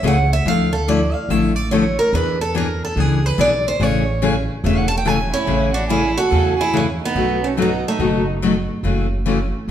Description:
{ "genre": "acoustic string swing (jazz manouche)", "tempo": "143 BPM", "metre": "4/4", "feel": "swing 63% on 8ths", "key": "A major", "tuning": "A4 = 440 Hz", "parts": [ { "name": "picked steel-string acoustic guitar", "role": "melody", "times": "0.0-8.3 s", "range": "A3 to A5", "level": "-20 LUFS", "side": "right 2 dB", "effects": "none" }, { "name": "picked steel-string acoustic guitar", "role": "accompaniment", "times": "0.0-9.7 s", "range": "B2 to G#4", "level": "-20 LUFS", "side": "left 4 dB", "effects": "none" }, { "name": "upright bass", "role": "bass", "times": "0.0-9.7 s", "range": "E1 to E2", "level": "-22 LUFS", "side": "right 1 dB", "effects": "none" }, { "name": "warm violin", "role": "second line", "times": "5.3-8.2 s", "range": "C#4 to A4", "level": "-25 LUFS", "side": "right 4 dB", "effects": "none" } ], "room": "wet large studio reverb, RT60 1.4 s", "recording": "band playing live in one room", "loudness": "-16 LUFS", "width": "side -10 dB against mid", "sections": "0.0-5.5 A section; 5.5-9.7 B section", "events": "steel-string acoustic guitar solo 0.0-5.5", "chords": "0.5 Dmadd9; 2.1 E7; 3.8 Amaj7; 7.2 B7; 8.8 F#m7" }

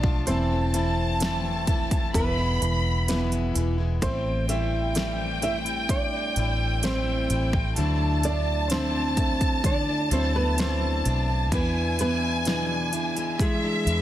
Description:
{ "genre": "pop ballad", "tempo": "64 BPM", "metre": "4/4", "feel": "straight", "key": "A minor", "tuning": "A4 = 444 Hz", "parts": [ { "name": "nylon-string guitar", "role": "melody", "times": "0.0-14.0 s", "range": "G#3 to E5", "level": "-29 LUFS", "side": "right 2 dB", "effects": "none" }, { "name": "rich studio violin section", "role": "second line", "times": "0.0-14.0 s", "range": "E5 to B5", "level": "-30 LUFS", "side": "equal", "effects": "none" }, { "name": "warm baby grand piano", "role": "accompaniment", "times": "0.0-14.0 s", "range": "D3 to A3", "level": "-32 LUFS", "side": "right 1 dB", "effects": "none" }, { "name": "picked plugged-in steel-string acoustic guitar", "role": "arpeggios", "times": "0.0-14.0 s", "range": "E2 to F4", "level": "-33 LUFS", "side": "left 6 dB", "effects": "none" }, { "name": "vintage muted fingered electric bass", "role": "bass", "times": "0.0-14.0 s", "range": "E1 to E2", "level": "-27 LUFS", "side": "equal", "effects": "none" }, { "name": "pop drum kit", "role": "drums", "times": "0.0-14.0 s", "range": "hi-hat, kick drum, snare drum", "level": "-27 LUFS", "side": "equal", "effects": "overdrive" } ], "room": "light reverb, studio reverb", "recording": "dense, heavily limited modern master", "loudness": "-22 LUFS", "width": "side -12 dB against mid", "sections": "0.0-14.0 A section", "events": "none", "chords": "0.3 Am/E; 2.1 E; 4.0 Am7; 7.8 Dadd9; 11.5 E7" }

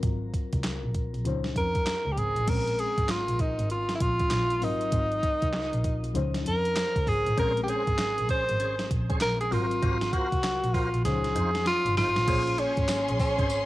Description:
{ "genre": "R&B, new jack swing", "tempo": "98 BPM", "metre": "4/4", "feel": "swing 63% on 16ths", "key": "Bb minor", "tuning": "A4 = 444 Hz", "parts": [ { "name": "mellow FM electric piano", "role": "accompaniment", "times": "0.0-13.7 s", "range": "F3 to F5", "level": "-37 LUFS", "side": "left 7 dB", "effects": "chorus, tremolo, cassette tape, shimmer reverb" }, { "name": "dark double bass", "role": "bass", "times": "0.0-13.5 s", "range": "G1 to F2", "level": "-30 LUFS", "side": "equal", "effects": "none" }, { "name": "crisp 8-bit digital drum machine", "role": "drums", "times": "0.0-13.7 s", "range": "crash cymbal, handclaps, hi-hat, kick drum, snare drum, tambourine", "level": "-31 LUFS", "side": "equal", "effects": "overdrive" }, { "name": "mellow tenor saxophone", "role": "melody", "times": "1.6-13.7 s", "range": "Db4 to C5", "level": "-27 LUFS", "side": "equal", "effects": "cassette tape, shimmer reverb" }, { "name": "tonewheel organ", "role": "stabs", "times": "7.4-13.5 s", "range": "Db4 to C5", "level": "-37 LUFS", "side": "right 1 dB", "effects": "chorus vibrato, slow rotary speaker, cassette tape, shimmer reverb" }, { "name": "dark studio string section", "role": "sustained chords", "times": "12.3-13.7 s", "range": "Db4 to C6", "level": "-34 LUFS", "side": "left 1 dB", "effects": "cassette tape, shimmer reverb" } ], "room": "light reverb", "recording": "home recording on cassette", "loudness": "-24 LUFS", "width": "side -16 dB against mid", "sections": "0.0-2.5 A section; 2.5-12.3 B section; 12.3-13.7 C section", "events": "drum fill 11.1-12.3", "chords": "0.0 Ab13 (rootless); 1.3 Dbmaj9; 2.5 Bbm9; 4.6 Ab13; 6.2 Dbmaj9; 7.4 Bbm9; 9.5 Ab13; 11.1 Dbmaj9; 12.3 Bbm9" }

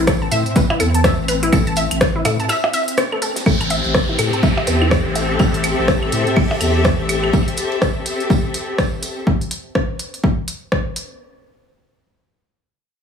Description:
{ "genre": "minimal techno", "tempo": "124 BPM", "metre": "4/4", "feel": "swing 60% on 16ths", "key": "A minor", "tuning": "A4 = 440 Hz", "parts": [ { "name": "saturated sub bass", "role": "bass", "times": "0.0-7.3 s", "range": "A1 to A2", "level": "-21 LUFS", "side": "left 1 dB", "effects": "sidechain pumping" }, { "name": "swarming drone", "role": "texture", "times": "0.0-3.5 s", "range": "C4", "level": "-29 LUFS", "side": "right 1 dB", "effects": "built-in reverb, sidechain pumping" }, { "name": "resonant blip pluck", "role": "riff", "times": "0.1-5.2 s", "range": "E4 to A5", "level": "-22 LUFS", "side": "left 1 dB", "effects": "chorus, vintage 12-bit sampler grit, sidechain pumping, digital delay" }, { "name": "electronic kick drum", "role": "drums", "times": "0.1-10.8 s", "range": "none", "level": "-17 LUFS", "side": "equal", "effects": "overdrive" }, { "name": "loose indie drum kit", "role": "drums", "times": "0.1-9.2 s", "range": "hi-hat, snare drum, tambourine", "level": "-32 LUFS", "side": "right 3 dB", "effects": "sidechain pumping on hats, high-pass filter on hats, high-pass filter on snare, sidechain pumping on perc, high-pass filter on perc, high-pass filter on room" }, { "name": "techno drum kit", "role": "drums", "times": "0.1-11.1 s", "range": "hi-hat, rim click", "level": "-22 LUFS", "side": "left 1 dB", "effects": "overdrive" }, { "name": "claves and percussion blips", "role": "percussion", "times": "0.1-7.3 s", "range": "none", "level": "-25 LUFS", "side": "right 3 dB", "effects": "digital delay" }, { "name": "downlifter", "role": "sound effects", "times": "3.5-7.3 s", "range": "none", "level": "-26 LUFS", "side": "equal", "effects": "none" }, { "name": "clear studio string section", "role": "texture", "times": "3.5-9.3 s", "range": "C4 to E5", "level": "-21 LUFS", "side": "left 2 dB", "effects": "sidechain pumping" } ], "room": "light reverb, small room ambience", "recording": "heavily compressed radio sound, studio reverb", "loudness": "-15 LUFS", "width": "side -7 dB against mid", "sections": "0.0-3.5 A section; 3.5-11.2 B section", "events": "drop 0.0-3.5; break 2.5-3.5; band accent 3.0; filter sweep on synth pluck 3.5-5.4", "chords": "0.0 Am; 3.5 Am7" }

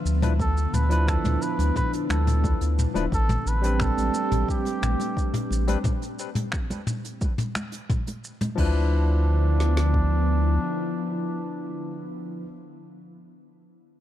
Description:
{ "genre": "sunset chillout", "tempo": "88 BPM", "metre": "4/4", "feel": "straight", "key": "D dorian", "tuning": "A4 = 441 Hz", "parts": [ { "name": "trumpet with cup mute", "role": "melody", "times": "0.0-12.1 s", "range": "D4 to B4", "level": "-32 LUFS", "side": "right 1 dB", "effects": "digital delay" }, { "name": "barky tine electric piano", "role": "accompaniment", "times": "0.0-12.5 s", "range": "F3 to E5", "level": "-31 LUFS", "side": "moving between left 8 dB and right 6 dB", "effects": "auto-pan, vintage 12-bit sampler grit, ping-pong delay" }, { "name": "ethereal airy pad", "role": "sustained chords", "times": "0.0-12.1 s", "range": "D3 to E5", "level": "-32 LUFS", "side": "left 1 dB", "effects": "ensemble chorus, built-in reverb" }, { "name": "warm sub bass", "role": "bass", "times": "0.1-10.6 s", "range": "D1 to D2", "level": "-22 LUFS", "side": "equal", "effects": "none" }, { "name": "vintage brush drum kit", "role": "drums", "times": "0.1-8.7 s", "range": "crash cymbal, finger snaps, hi-hat, shaker, toms", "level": "-31 LUFS", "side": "left 1 dB", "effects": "none" }, { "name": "congas", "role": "percussion", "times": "0.2-8.5 s", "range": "none", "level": "-34 LUFS", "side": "equal", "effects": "none" }, { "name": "deep house drum kit", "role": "drums", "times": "0.4-10.1 s", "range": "kick drum, snare drum", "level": "-27 LUFS", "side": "equal", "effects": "none" } ], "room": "light reverb, small room ambience", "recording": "dark, warm production", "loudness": "-22 LUFS", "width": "side -12 dB against mid", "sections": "0.0-8.6 A section; 8.6-11.3 B section", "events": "none", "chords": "0.0 Dm69; 3.1 Am11; 8.6 Dm69" }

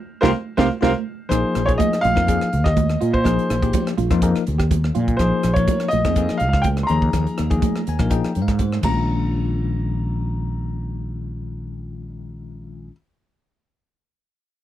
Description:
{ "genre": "electric jazz fusion", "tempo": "124 BPM", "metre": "4/4", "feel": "swing 54% on 16ths", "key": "Bb dorian", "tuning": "A4 = 440 Hz", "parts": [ { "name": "clear baby grand piano", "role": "melody", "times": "0.2-12.9 s", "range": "Bb4 to C6", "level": "-23 LUFS", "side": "equal", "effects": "none" }, { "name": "bell-like tine electric piano", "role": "accompaniment", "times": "0.2-12.9 s", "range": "Eb3 to Ab5", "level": "-25 LUFS", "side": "left 6 dB", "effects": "medium stereo tremolo" }, { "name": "semi-hollow electric guitar", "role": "stabs", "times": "0.2-5.1 s", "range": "C4 to Ab4", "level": "-28 LUFS", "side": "right 11 dB", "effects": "analog chorus" }, { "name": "fretless electric bass", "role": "bass", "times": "0.2-12.9 s", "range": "Bb1 to Bb2", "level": "-22 LUFS", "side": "equal", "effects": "lush chorus" }, { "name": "crisp fusion drum kit", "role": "drums", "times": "0.2-9.0 s", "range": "crash cymbal, hi-hat, kick drum, rim click, snare drum", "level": "-23 LUFS", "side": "equal", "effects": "none" }, { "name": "congas", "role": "percussion", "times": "0.2-9.3 s", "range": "none", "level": "-27 LUFS", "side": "right 11 dB", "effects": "none" } ], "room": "little or no reverb", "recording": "none", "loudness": "-18 LUFS", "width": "side -12 dB against mid", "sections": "0.0-1.3 A section; 1.3-9.1 B section; 9.1-13.0 C section", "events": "band accent 0.0-1.3; tine electric piano fill 7.6-9.1; drum fill 8.8", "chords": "0.0 Csus4; 1.3 Bb9sus4; 6.9 Ebsus24; 8.8 Bbm" }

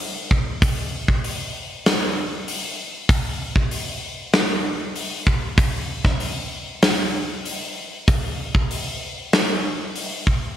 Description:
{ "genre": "rock", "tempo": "96 BPM", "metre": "4/4", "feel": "straight", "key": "none", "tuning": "none", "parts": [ { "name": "big rock drum kit", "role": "drums", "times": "0.0-10.4 s", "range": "hi-hat, kick drum, snare drum", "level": "-20 LUFS", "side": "equal", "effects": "none" } ], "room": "light reverb", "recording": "bright 1980s-style digital production", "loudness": "-20 LUFS", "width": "side -11 dB against mid", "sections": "0.0-10.6 A section", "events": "none", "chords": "none" }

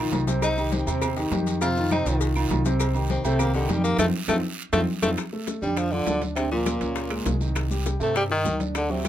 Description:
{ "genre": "Afro-Cuban jazz", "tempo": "202 BPM", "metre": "4/4", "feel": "straight", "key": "unclear", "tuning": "A4 = 442 Hz", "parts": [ { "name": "warm concert grand piano", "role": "accompaniment", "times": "0.0-9.1 s", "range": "C3 to D5", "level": "-28 LUFS", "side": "equal", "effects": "none" }, { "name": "upright bass", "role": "bass", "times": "0.0-9.1 s", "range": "Bb1 to G2", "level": "-27 LUFS", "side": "equal", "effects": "none" }, { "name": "congas", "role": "percussion", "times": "0.1-9.1 s", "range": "none", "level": "-32 LUFS", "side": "left 3 dB", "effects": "none" }, { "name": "cowbell and bongos", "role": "percussion", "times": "0.1-9.1 s", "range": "none", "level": "-35 LUFS", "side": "left 7 dB", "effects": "none" }, { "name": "guiro", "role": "percussion", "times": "0.1-9.1 s", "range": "none", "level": "-40 LUFS", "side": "right 7 dB", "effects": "none" }, { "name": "maracas", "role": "percussion", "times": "0.1-9.1 s", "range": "none", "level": "-39 LUFS", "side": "left 8 dB", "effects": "none" }, { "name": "timbales and agogo bells", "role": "percussion", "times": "0.1-9.1 s", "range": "none", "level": "-34 LUFS", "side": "right 8 dB", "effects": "none" }, { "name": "bright tenor saxophone", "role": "melody", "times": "0.4-9.1 s", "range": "Bb2 to F4", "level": "-26 LUFS", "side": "left 2 dB", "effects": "none" }, { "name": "claves", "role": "percussion", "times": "0.4-9.1 s", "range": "none", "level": "-37 LUFS", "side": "right 1 dB", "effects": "none" }, { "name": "clear trombone", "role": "second line", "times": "5.6-9.1 s", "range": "Bb3 to A4", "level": "-31 LUFS", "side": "right 6 dB", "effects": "none" } ], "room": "light reverb", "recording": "close, detailed microphones", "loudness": "-22 LUFS", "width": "side -11 dB against mid", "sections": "0.0-5.2 A section; 5.2-9.1 B section", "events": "tenor saxophone solo 0.0-5.2; band accent 4.0-5.2; drum fill 4.3-5.2", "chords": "0.4 Cm; 1.6 F5; 2.8 Cm; 4.0 F7(no3); 5.2 Dmadd11; 6.4 Bbadd9; 7.0 Dbsus2; 7.6 Cmadd9" }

